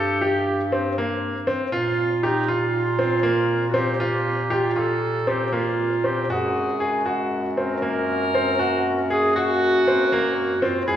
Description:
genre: contemporary instrumental, chamber music in an uneven meter.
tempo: 237 BPM (eighths).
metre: 9/8.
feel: straight.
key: unclear.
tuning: A4 = 440 Hz.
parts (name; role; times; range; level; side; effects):
clear clarinet; second line; 0.0-11.0 s; Eb4 to Bb4; -23 LUFS; right 2 dB; none.
clear baby grand piano; arpeggios; 0.0-11.0 s; Bb3 to A4; -24 LUFS; left 1 dB; none.
clear bass clarinet; bass; 0.0-11.0 s; E2 to Bb2; -27 LUFS; equal; none.
clear woodwind section; sustained chords; 6.3-11.0 s; Bb2 to Gb4; -31 LUFS; right 1 dB; none.
room: wet recital hall reverb, RT60 1.8 s.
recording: recorded in a church or concert hall.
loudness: -20 LUFS.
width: side -10 dB against mid.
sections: 0.0-11.0 A section.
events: none.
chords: 0.0 Gm; 1.7 Bb5; 6.3 Gbadd9.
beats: 0.22 0.47 0.72 0.98 1.23 1.48 | 1.73 1.98 2.24 2.49 2.74 2.99 3.25 3.50 3.75 | 4.00 4.26 4.51 4.77 5.02 5.28 5.54 5.79 6.05 | 6.30 6.56 6.81 7.07 7.32 7.58 7.83 8.09 8.34 | 8.60 8.85 9.10 9.35 9.61 9.86 10.11 10.36 10.61 | 10.87.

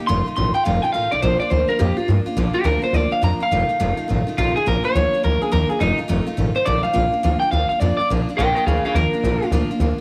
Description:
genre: rockabilly.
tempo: 210 BPM.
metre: 4/4.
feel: swing 63% on 8ths.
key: Bb major.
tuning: A4 = 440 Hz.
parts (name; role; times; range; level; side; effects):
picked steel-string acoustic guitar; accompaniment; 0.0-10.0 s; F2 to F4; -27 LUFS; equal; none.
electric guitar through a small old amp; melody; 0.1-9.5 s; Eb4 to C6; -23 LUFS; equal; tape echo.
upright bass; bass; 0.1-10.0 s; F1 to G2; -23 LUFS; equal; none.
room: light reverb, small room ambience.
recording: none.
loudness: -19 LUFS.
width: mono.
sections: 0.0-2.4 A section; 2.4-10.0 B section.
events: clean electric guitar solo 0.0-2.4.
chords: 0.1 F7; 1.2 Bb; 3.5 F7; 4.7 Bb; 5.8 F7; 7.0 Bb.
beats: | 0.09 0.37 0.66 0.94 | 1.23 1.51 1.80 2.09 | 2.37 2.66 2.94 3.23 | 3.52 3.80 4.09 4.38 | 4.66 4.95 5.24 5.52 | 5.81 6.09 6.38 6.67 | 6.95 7.24 7.52 7.81 | 8.10 8.38 8.67 8.95 | 9.24 9.53 9.81.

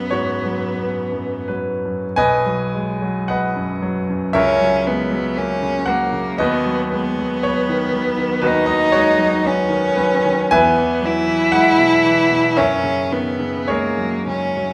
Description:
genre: classical, romantic duo for cello and grand piano.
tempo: 40-61 BPM.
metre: 4/4.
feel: rubato.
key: B major.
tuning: A4 = 440 Hz.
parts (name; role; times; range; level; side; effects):
rich cello; melody; 0.0-14.7 s; A#3 to E4; -21 LUFS; equal; none.
bright grand piano; accompaniment; 0.0-14.7 s; B1 to G#5; -21 LUFS; equal; none.
room: wet recital hall reverb, RT60 1.6 s.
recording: none.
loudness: -18 LUFS.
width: mono.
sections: 0.0-2.2 A section; 2.2-14.7 B section.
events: none.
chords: 0.0 B5; 2.2 B; 4.4 F#7/C#; 6.4 B/D#; 10.5 E; 12.6 F#9.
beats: 0.80 | 2.18 3.30 4.36 5.37 | 6.40 7.43 8.43 9.44 | 10.53 11.53 12.56 13.68.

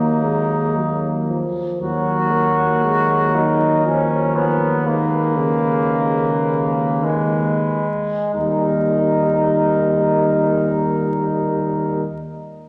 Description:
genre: classical, hymn-like piece for brass band.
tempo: 44-60 BPM.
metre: 3/4.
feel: rubato.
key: Eb minor.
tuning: A4 = 440 Hz.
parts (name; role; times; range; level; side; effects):
warm cornet; melody; 0.0-12.0 s; Eb4 to Cb5; -28 LUFS; equal; none.
warm flugelhorn; second line; 0.0-12.0 s; Ab3 to Gb4; -22 LUFS; equal; none.
clear trombone; accompaniment; 0.0-12.0 s; Bb2 to Ab3; -32 LUFS; equal; none.
mellow euphonium; accompaniment; 0.0-12.0 s; Db3 to Bb3; -26 LUFS; equal; none.
mellow tuba; bass; 0.0-12.0 s; Eb2; -25 LUFS; equal; none.
room: wet concert hall reverb, RT60 2.3 s.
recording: vinyl crackle.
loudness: -19 LUFS.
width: mono.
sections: 0.0-1.8 A section; 1.8-8.3 B section; 8.3-12.1 C section.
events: slowing down 0.2-8.3.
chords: 0.0 Ebm; 4.9 Abm/Eb; 8.3 Eb.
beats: 0.76 | 1.81 2.84 3.86 | 4.86 5.88 7.03 | 8.34 9.60 10.87.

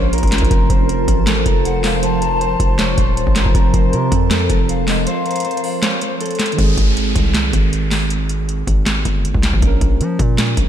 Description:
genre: hip hop, trap.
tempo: 158 BPM.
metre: 4/4.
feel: half-time.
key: unclear.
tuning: A4 = 441 Hz.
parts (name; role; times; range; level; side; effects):
concert harp; melody; 0.0-8.4 s; A4 to Db5; -23 LUFS; left 2 dB; ping-pong delay.
breathy mellow polished pan flute; second line; 0.0-6.2 s; C5 to A5; -25 LUFS; left 4 dB; ping-pong delay.
tine electric piano; accompaniment; 0.0-10.7 s; Eb3 to C5; -24 LUFS; right 6 dB; lush chorus.
glassy FM pad; sustained chords; 0.0-6.5 s; F3 to A5; -24 LUFS; equal; ensemble chorus, built-in reverb.
distorted 808-style bass; bass; 0.0-10.7 s; Eb1 to F3; -19 LUFS; equal; distortion.
booming analog drum machine; drums; 0.1-10.7 s; handclaps, hi-hat, kick drum, snare drum; -17 LUFS; equal; overdrive.
downlifter; sound effects; 6.6-9.6 s; none; -27 LUFS; equal; none.
room: light reverb.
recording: none.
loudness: -14 LUFS.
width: side -10 dB against mid.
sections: 0.0-6.6 A section; 6.6-10.7 B section.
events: break 5.1-6.6.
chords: 0.0 Bbm; 0.5 F; 6.6 Ab; 9.6 Bbm.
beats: 0.13 | 0.51 0.89 1.27 1.65 | 2.03 2.41 2.79 3.17 | 3.55 3.93 4.31 4.69 | 5.07 5.45 5.83 6.21 | 6.58 6.96 7.34 7.72 | 8.10 8.48 8.86 9.24 | 9.62 10.00 10.38.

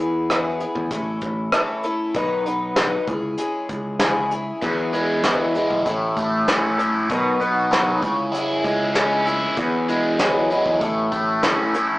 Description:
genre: folk rock and heartland rock.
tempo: 97 BPM.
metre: 4/4.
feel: straight.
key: E major.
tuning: A4 = 440 Hz.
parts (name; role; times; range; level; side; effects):
picked twelve-string acoustic guitar; accompaniment; 0.0-12.0 s; A2 to B4; -23 LUFS; left 1 dB; none.
modern bright picked electric bass; bass; 0.0-11.4 s; A1 to E2; -30 LUFS; equal; none.
soft brush drum kit; drums; 0.3-11.9 s; hi-hat, kick drum, rim click, snare drum; -23 LUFS; equal; none.
crunchy overdriven guitar; riff; 4.6-12.0 s; E2 to E4; -20 LUFS; equal; phaser.
room: moderate stone room reverb, RT60 1.2 s.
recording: rough rehearsal-room recording, warm saturation, small speaker sound.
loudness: -18 LUFS.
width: side -18 dB against mid.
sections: 0.0-12.0 A section.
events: none.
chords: 0.0 Eadd9; 0.9 A; 2.1 B; 3.1 C#m; 4.6 Eadd9; 5.9 A; 7.1 B; 8.0 C#m; 9.6 Eadd9; 10.8 A.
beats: 0.29 0.91 1.53 | 2.15 2.77 3.38 4.00 | 4.62 5.24 5.86 6.48 | 7.09 7.71 8.33 8.95 | 9.57 10.19 10.81 11.43.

